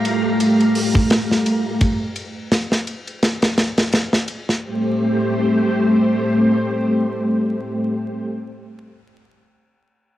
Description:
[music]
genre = trip hop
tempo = 85 BPM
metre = 4/4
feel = swing 57% on 16ths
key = A phrygian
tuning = A4 = 441 Hz
[part]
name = string machine, cellos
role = sustained chords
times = 0.0-8.2 s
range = A3 to Bb5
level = -17 LUFS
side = equal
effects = ensemble chorus, cassette tape
[part]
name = tight metal drum kit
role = drums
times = 0.0-4.6 s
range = hi-hat, kick drum, ride cymbal, snare drum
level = -19 LUFS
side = equal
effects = none
[sound]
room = moderate spring reverb, RT60 2.5 s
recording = home recording on cassette, vinyl crackle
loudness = -16 LUFS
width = side -14 dB against mid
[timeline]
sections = 0.0-4.6 A section; 4.6-7.5 B section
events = none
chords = 0.0 Gm7/A; 4.6 Am7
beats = 0.39 1.10 | 1.80 2.51 3.22 3.92 | 4.63 5.33 6.04 6.75

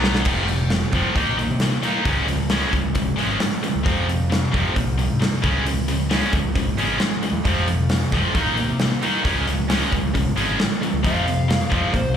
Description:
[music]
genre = classic rock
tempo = 134 BPM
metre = 4/4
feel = straight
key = F minor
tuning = A4 = 439 Hz
[part]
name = distorted electric guitar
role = riff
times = 0.0-12.1 s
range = F2 to Eb4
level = -24 LUFS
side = right 8 dB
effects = overdrive, slapback echo
[part]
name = tight distorted guitar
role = riff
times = 0.0-12.2 s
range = F2 to Eb4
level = -24 LUFS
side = left 9 dB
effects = distortion
[part]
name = growling picked electric bass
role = bass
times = 0.0-12.2 s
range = F1 to C3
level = -24 LUFS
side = equal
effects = overdrive
[part]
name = big rock drum kit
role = drums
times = 0.0-12.0 s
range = crash cymbal, hi-hat, kick drum, snare drum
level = -23 LUFS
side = equal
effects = none
[part]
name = overdriven slide guitar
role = second line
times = 11.1-12.2 s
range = C5 to F5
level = -26 LUFS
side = left 2 dB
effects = slapback echo
[sound]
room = light reverb, studio ambience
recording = live gig heard through the venue's PA, club reverb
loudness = -18 LUFS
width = side -8 dB against mid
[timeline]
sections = 0.3-12.2 A section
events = drum fill 0.0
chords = 0.3 F5; 1.2 Eb5; 2.1 Db; 3.9 Fm; 5.4 Db; 7.5 F5; 8.4 Eb5; 9.3 Db; 11.0 F5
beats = | 0.26 0.71 1.16 1.60 | 2.05 2.50 2.95 3.40 | 3.85 4.30 4.75 5.21 | 5.66 6.11 6.55 7.00 | 7.45 7.90 8.35 8.80 | 9.25 9.70 10.15 10.60 | 11.04 11.49 11.94

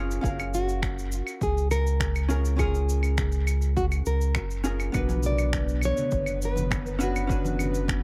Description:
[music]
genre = sunset chillout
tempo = 102 BPM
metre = 4/4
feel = straight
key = F# major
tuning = A4 = 439 Hz
[part]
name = vintage hollow-body jazz guitar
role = accompaniment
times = 0.0-8.0 s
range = B3 to E#5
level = -35 LUFS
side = equal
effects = analog delay
[part]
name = warm sub bass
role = bass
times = 0.0-8.0 s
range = F#1 to C#2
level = -29 LUFS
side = equal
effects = none
[part]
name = cabasa, claves and finger snaps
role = drums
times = 0.1-8.0 s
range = none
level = -37 LUFS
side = equal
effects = dub echo
[part]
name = electronic kick drum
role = drums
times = 0.2-8.0 s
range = none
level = -33 LUFS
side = equal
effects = none
[part]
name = nylon-string guitar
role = melody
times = 0.5-8.0 s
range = F#4 to D5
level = -34 LUFS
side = equal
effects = tape echo
[part]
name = airy breathy pad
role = sustained chords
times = 5.4-8.0 s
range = D3 to B4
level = -38 LUFS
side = equal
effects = chorus
[part]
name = congas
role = percussion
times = 5.1-7.7 s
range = none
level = -39 LUFS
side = equal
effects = dub echo
[sound]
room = light reverb, small room ambience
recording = echo-heavy mix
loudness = -26 LUFS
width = mono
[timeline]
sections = 0.0-8.0 A section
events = none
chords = 0.0 F#maj7; 4.9 Bmadd9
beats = | 0.24 0.83 1.42 2.00 | 2.59 3.18 3.77 4.36 | 4.94 5.53 6.12 6.71 | 7.30 7.88

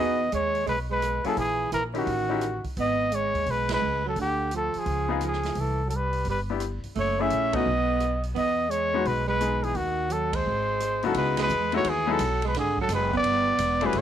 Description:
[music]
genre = jazz, small-group swing and bop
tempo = 172 BPM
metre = 4/4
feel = swing 65% on 8ths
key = E major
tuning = A4 = 440 Hz
[part]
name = warm trumpet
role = melody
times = 0.0-14.0 s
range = F#4 to E5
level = -26 LUFS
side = left 1 dB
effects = none
[part]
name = growling alto saxophone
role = second line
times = 0.0-14.0 s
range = D3 to C#4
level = -30 LUFS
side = right 10 dB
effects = none
[part]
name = clear baby grand piano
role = accompaniment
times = 0.0-2.4, 5.1-14.0 s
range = C#3 to G#4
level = -29 LUFS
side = left 10 dB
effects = none
[part]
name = upright bass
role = bass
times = 0.0-14.0 s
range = E1 to E2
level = -31 LUFS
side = equal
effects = none
[part]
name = open jazz drum kit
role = drums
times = 0.3-14.0 s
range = hi-hat, kick drum, ride cymbal, rim click, snare drum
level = -39 LUFS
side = right 3 dB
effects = none
[sound]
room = little or no reverb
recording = 1960s-style stereo with parts hard left and right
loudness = -23 LUFS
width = side -10 dB against mid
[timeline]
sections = 0.0-11.2 A section; 11.2-14.0 B section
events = band accent 3.6, 7.5, 10.3, 11.3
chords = 0.0 Emaj7; 1.4 A#m7b5; 2.1 A7#11; 2.8 G#m; 4.2 Dmadd11; 4.9 C#9; 5.6 Cmaj7(no3); 7.0 F#m7; 7.7 B; 8.4 Emaj7; 9.8 D#dim; 10.5 G#7; 11.2 C#m11; 12.6 Bm6; 13.2 G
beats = 0.33 0.68 1.02 | 1.37 1.72 2.07 2.42 | 2.77 3.12 3.47 3.82 | 4.17 4.52 4.87 5.22 | 5.57 5.92 6.27 6.62 | 6.97 7.32 7.67 8.02 | 8.37 8.72 9.07 9.41 | 9.76 10.11 10.46 10.81 | 11.16 11.51 11.85 12.20 | 12.55 12.90 13.24 13.59 | 13.94

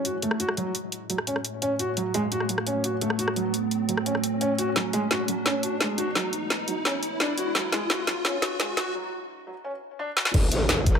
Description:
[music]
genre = dark technical drum and bass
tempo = 172 BPM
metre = 4/4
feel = straight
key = F# minor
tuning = A4 = 440 Hz
[part]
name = deep dark ambient pad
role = sustained chords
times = 0.0-11.0 s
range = G#3 to C#5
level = -32 LUFS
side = right 2 dB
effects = chorus, built-in reverb, sidechain pumping
[part]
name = drum and bass drum kit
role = drums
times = 0.0-11.0 s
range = crash cymbal, hi-hat, rim click, snare drum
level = -26 LUFS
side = equal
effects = overdrive
[part]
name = riser and impact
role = sound effects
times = 0.8-11.0 s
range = none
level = -33 LUFS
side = equal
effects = none
[part]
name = felt-muted upright piano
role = arpeggios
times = 0.1-10.3 s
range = F#3 to F#4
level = -29 LUFS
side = equal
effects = sidechain pumping, ping-pong delay
[part]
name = growl bass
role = bass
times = 10.3-11.0 s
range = F#1 to A1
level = -26 LUFS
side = equal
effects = chorus, tube saturation, sidechain pumping
[part]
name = electronic kick drum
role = drums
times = 10.3-10.9 s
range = none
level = -20 LUFS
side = equal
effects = overdrive
[sound]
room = light reverb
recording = high-pass filter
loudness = -24 LUFS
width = side -7 dB against mid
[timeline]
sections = 0.0-10.3 A section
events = build-up 0.0-10.3; filter sweep on ambient pad 0.0-10.3; filter sweep 0.0-10.3; riser 0.8-8.9; drum fill 4.8-8.9, 10.2; break 8.9-10.3; impact 10.3-11.0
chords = 0.0 F#m; 4.8 E; 10.3 F#m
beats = 0.23 | 0.57 0.92 1.27 1.62 | 1.97 2.32 2.67 3.02 | 3.37 3.71 4.06 4.41 | 4.76 5.11 5.46 5.81 | 6.16 6.50 6.85 7.20 | 7.55 7.90 8.25 8.60 | 8.95 9.29 9.64 9.99 | 10.34 10.69

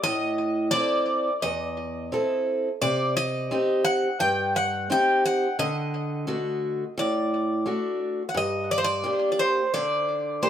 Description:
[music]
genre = greek folk, Greek bouzouki band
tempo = 87 BPM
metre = 4/4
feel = straight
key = G harmonic minor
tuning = A4 = 440 Hz
[part]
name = Greek bouzouki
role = melody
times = 0.0-10.5 s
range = C5 to G5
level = -25 LUFS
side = left 1 dB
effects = tape echo
[part]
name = picked steel-string acoustic guitar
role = accompaniment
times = 0.0-10.5 s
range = E2 to A4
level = -26 LUFS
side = right 1 dB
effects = none
[sound]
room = wet studio reverb, RT60 0.6 s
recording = heard from further back in the room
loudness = -23 LUFS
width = side -9 dB against mid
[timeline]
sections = 0.0-10.5 A section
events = none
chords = 0.0 Am; 2.8 Cm; 5.6 D; 8.4 Gm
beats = | 0.04 0.73 1.43 2.12 | 2.81 3.51 4.20 4.89 | 5.58 6.28 6.97 7.66 | 8.36 9.05 9.74 10.44

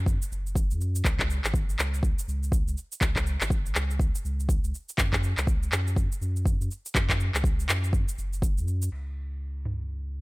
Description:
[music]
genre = afro house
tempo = 122 BPM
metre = 4/4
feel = swing 60% on 16ths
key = unclear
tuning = A4 = 438 Hz
[part]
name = warm sub bass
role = bass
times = 0.0-10.2 s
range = F#1 to F#2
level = -29 LUFS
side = equal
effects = sidechain pumping
[part]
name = afro-pop drum kit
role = drums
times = 0.1-9.8 s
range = crash cymbal, handclaps, shaker, toms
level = -30 LUFS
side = equal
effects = overdrive, low-pass filter on perc, low-pass filter on snare, low-pass filter on cymbals, low-pass filter on toms
[part]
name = electronic kick drum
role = drums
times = 0.1-8.5 s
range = none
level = -26 LUFS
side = equal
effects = overdrive
[sound]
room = little or no reverb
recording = none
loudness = -25 LUFS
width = side -23 dB against mid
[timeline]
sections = 0.0-8.9 A section; 8.9-10.2 B section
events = none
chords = none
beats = 0.07 0.56 | 1.05 1.54 2.03 2.52 | 3.02 3.51 4.00 4.49 | 4.98 5.47 5.97 6.46 | 6.95 7.44 7.93 8.43 | 8.92 9.41 9.90

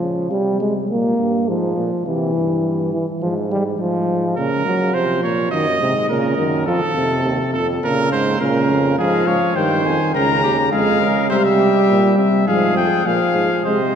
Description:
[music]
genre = classical, imitative canzona for brass ensemble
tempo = 103 BPM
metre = 4/4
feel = straight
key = Bb minor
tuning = A4 = 440 Hz
[part]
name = warm euphonium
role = accompaniment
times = 0.0-13.8 s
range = C3 to Bb3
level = -18 LUFS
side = equal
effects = none
[part]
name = clear bass trombone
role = bass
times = 0.0-14.0 s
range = Db2 to Db3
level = -22 LUFS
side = right 2 dB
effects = none
[part]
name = bright trumpet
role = second line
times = 4.4-14.0 s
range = G4 to Eb5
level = -21 LUFS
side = right 2 dB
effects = none
[part]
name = warm trumpet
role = melody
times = 9.0-14.0 s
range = Eb5 to Bb5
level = -20 LUFS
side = left 8 dB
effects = none
[sound]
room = wet church reverb, RT60 3.1 s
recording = dark, warm production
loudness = -15 LUFS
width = side -8 dB against mid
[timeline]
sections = 0.0-13.7 A section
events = none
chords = 0.0 Fm; 0.9 Bb5; 2.1 C; 3.2 Fm/Ab; 4.4 Bbm; 5.5 Ebm/Gb; 6.7 F; 7.8 Bbm; 9.0 Fm/Ab; 10.1 Bbm/Db; 11.3 C; 12.5 Fm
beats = 0.31 0.89 1.48 | 2.06 2.64 3.22 3.79 | 4.37 4.94 5.52 6.10 | 6.67 7.25 7.83 8.41 | 8.99 9.56 10.14 10.72 | 11.31 11.89 12.48 13.06 | 13.65

